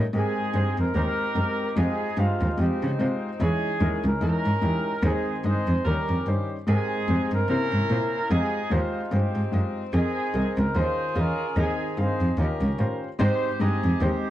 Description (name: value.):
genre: uptempo gospel.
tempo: 147 BPM.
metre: 4/4.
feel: swing 57% on 8ths.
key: Ab major.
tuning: A4 = 440 Hz.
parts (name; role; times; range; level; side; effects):
warm cello; bass; 0.0-14.1 s; C2 to Db3; -24 LUFS; equal; tube saturation.
mellow horn section; melody; 0.1-14.3 s; Ab3 to C5; -28 LUFS; right 1 dB; none.
warm concert grand piano; accompaniment; 0.1-14.3 s; Ab2 to F5; -29 LUFS; left 2 dB; none.
room: light reverb, studio ambience.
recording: worn, warbling old tape, cassette tape, warbly pitch drift.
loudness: -22 LUFS.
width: side -13 dB against mid.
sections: 0.1-13.2 A section; 13.2-14.3 B section.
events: none.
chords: 0.1 Abmaj9; 1.8 Fm9; 3.4 Dbmadd9; 5.0 Ab/Eb; 5.9 Eb7; 6.7 Abmaj9; 7.5 C7b9; 8.3 Fm9; 9.9 Bb9sus4; 10.8 Eb9sus4; 11.6 Ab/Eb; 12.4 Eb9; 13.2 Abmaj7.